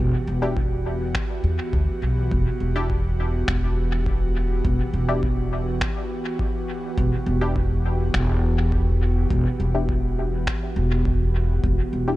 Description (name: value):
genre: ambient dub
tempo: 103 BPM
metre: 4/4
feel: straight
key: E minor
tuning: A4 = 440 Hz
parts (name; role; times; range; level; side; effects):
- airy breathy pad; sustained chords; 0.0-12.2 s; E3 to G4; -28 LUFS; right 1 dB; chorus
- upright bass; bass; 0.0-12.2 s; E1 to E2; -22 LUFS; equal; none
- filtered dub chord stab; stabs; 0.4-12.2 s; D4 to G4; -31 LUFS; left 2 dB; chorus, dub echo
- electronic kick drum; drums; 0.6-11.8 s; none; -27 LUFS; equal; overdrive
- electronic finger snaps; drums; 1.1-10.6 s; none; -32 LUFS; equal; overdrive, dub echo
room: digital ambience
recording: echo-heavy mix, nothing above 10.7 kHz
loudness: -20 LUFS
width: side -17 dB against mid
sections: 0.0-12.2 A section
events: none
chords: 0.0 Em7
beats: 0.57 1.15 1.74 | 2.32 2.90 3.48 4.07 | 4.65 5.23 5.81 6.39 | 6.98 7.56 8.14 8.72 | 9.31 9.89 10.47 11.05 | 11.64